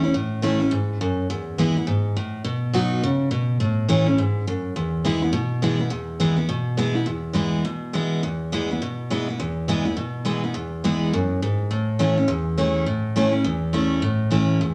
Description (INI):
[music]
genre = rock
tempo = 207 BPM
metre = 4/4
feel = swing 61% on 8ths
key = E major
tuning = A4 = 435 Hz
[part]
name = picked steel-string acoustic guitar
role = solo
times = 0.0-14.7 s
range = E2 to F#4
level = -23 LUFS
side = equal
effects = none
[sound]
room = wet large studio reverb, RT60 1.1 s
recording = none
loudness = -23 LUFS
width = mono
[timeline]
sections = 0.0-7.1 A section; 7.1-14.7 B section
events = none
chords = 0.0 A; 1.3 E; 2.4 B; 3.6 A; 4.8 E; 11.7 A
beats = | 0.14 0.43 0.72 1.00 | 1.29 1.58 1.87 2.16 | 2.45 2.74 3.02 3.31 | 3.60 3.89 4.18 4.47 | 4.76 5.04 5.33 5.62 | 5.91 6.20 6.49 6.78 | 7.07 7.36 7.65 7.93 | 8.22 8.52 8.80 9.10 | 9.38 9.68 9.96 10.26 | 10.54 10.84 11.12 11.41 | 11.70 11.99 12.28 12.57 | 12.86 13.15 13.44 13.73 | 14.02 14.31 14.60